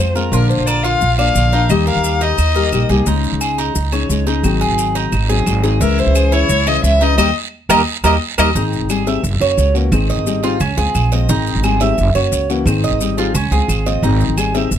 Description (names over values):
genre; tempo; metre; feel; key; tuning
latin, Cuban son and guajira; 175 BPM; 4/4; straight; Ab major; A4 = 443 Hz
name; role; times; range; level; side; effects
rich violin; melody; 0.0-2.9, 5.8-8.5 s; Bb4 to F5; -17 LUFS; left 4 dB; none
fingerpicked steel-string acoustic guitar; accompaniment; 0.0-14.8 s; Db3 to Ab4; -20 LUFS; left 6 dB; none
Cuban tres; arpeggios; 0.0-14.8 s; Db4 to Fb5; -20 LUFS; right 5 dB; none
upright bass; bass; 0.0-14.8 s; Gb1 to F2; -16 LUFS; right 1 dB; none
guiro; percussion; 0.2-14.8 s; none; -28 LUFS; right 8 dB; none
maracas; percussion; 0.2-14.8 s; none; -28 LUFS; left 7 dB; none
claves; percussion; 0.7-14.5 s; none; -27 LUFS; right 3 dB; none
room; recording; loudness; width
light reverb; close, detailed microphones; -13 LUFS; side -9 dB against mid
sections
0.0-8.6 A section; 8.6-14.8 B section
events
band accent 7.2-8.6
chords
0.3 Bb; 1.7 Eb; 3.1 Dbsus2; 4.4 Ab7; 5.8 Dbm; 7.2 Eb; 8.6 Abmaj7; 9.2 Gb7; 9.9 Abmaj7; 10.6 Dbmaj7; 11.3 Abmaj7; 12.0 Gb7; 12.7 Abmaj7; 13.4 Dbmaj7; 14.0 Abmaj7